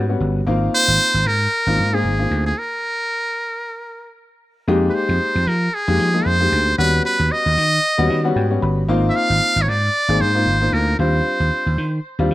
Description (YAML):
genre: early-eighties boogie funk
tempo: 114 BPM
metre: 4/4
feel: swing 56% on 16ths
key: F dorian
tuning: A4 = 439 Hz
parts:
  - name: warm grand piano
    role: accompaniment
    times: 0.0-12.3 s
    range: G3 to B5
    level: -22 LUFS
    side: left 2 dB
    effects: none
  - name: vintage slap bass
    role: bass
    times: 0.0-12.3 s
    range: G1 to F3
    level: -19 LUFS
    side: right 1 dB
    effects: none
  - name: trumpet with metal mute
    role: melody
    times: 0.7-12.0 s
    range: Ab4 to F5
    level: -19 LUFS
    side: equal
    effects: none
room: light reverb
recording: rough home demo mix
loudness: -16 LUFS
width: side -16 dB against mid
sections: 0.0-4.7 A section; 4.7-12.3 A section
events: stop 2.6-4.7; grand piano fill 7.8-8.9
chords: 0.5 Ab69; 2.6 N.C.; 4.7 Fm11; 6.8 Eb7alt; 8.9 Ab69; 11.0 Ebmaj13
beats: | 0.47 0.99 1.52 2.05 | 2.57 3.10 3.63 4.15 | 4.68 5.21 5.73 6.26 | 6.79 7.31 7.84 8.36 | 8.89 9.42 9.94 10.47 | 10.99 11.52 12.05